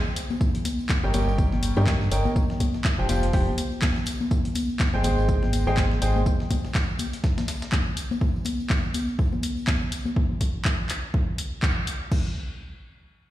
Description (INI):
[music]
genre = piano house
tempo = 123 BPM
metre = 4/4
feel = swing 57% on 16ths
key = Ab major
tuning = A4 = 440 Hz
[part]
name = tambourine and congas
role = percussion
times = 0.1-10.1 s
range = none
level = -31 LUFS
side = left 3 dB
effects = none
[part]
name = dusty soul sampler-style drum kit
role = drums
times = 0.2-8.1 s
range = hi-hat, snare drum, tambourine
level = -42 LUFS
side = equal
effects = none
[part]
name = house drum kit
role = drums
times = 0.2-12.2 s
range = crash cymbal, handclaps, hi-hat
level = -31 LUFS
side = equal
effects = none
[part]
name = electronic kick drum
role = drums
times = 0.4-12.2 s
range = none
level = -24 LUFS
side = equal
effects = overdrive
[part]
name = clear upright piano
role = riff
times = 1.0-6.2 s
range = F3 to G5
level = -28 LUFS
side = equal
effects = sidechain pumping, ping-pong delay
[part]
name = organ-like FM bass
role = bass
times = 1.0-6.2 s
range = F1 to G2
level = -24 LUFS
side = equal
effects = tube saturation, sidechain pumping
[sound]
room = light reverb, digital ambience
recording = played on a big sound system in a bare room, large studio reverb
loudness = -22 LUFS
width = side -14 dB against mid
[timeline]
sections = 0.0-12.1 A section; 12.1-13.3 B section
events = drop 0.0-12.1; band accent 11.6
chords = 0.4 Eb7/G; 2.4 Fsus2; 4.3 Abmaj7; 8.2 N.C.